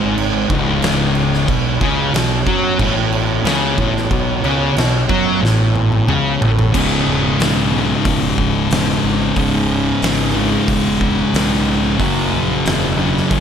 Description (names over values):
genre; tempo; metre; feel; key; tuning
stoner and doom metal; 91 BPM; 4/4; straight; C# minor from 6.7 s; A4 = 440 Hz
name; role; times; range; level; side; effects
deep rumbling drone; sustained chords; 0.0-13.4 s; C#3 to C#5; -28 LUFS; right 2 dB; none
thick fuzz guitar; riff; 0.0-13.4 s; C#2 to F#3; -18 LUFS; left 8 dB; distortion
thick fuzz guitar; riff; 0.0-13.4 s; C#2 to F#3; -19 LUFS; right 7 dB; distortion
fuzz fingered electric bass; bass; 0.0-13.4 s; C#1 to F#2; -23 LUFS; equal; overdrive
oversized low-tuned drum kit; drums; 0.2-13.4 s; crash cymbal, hi-hat, kick drum, snare drum, toms; -20 LUFS; right 1 dB; none
room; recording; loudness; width
moderate large studio reverb, RT60 1.5 s, small room reverb; none; -14 LUFS; side -8 dB against mid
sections
0.0-6.7 A section; 6.7-13.4 B section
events
drum fill 5.4-6.7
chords
0.0 C#5; 1.5 B5; 6.7 C#m; 12.0 F#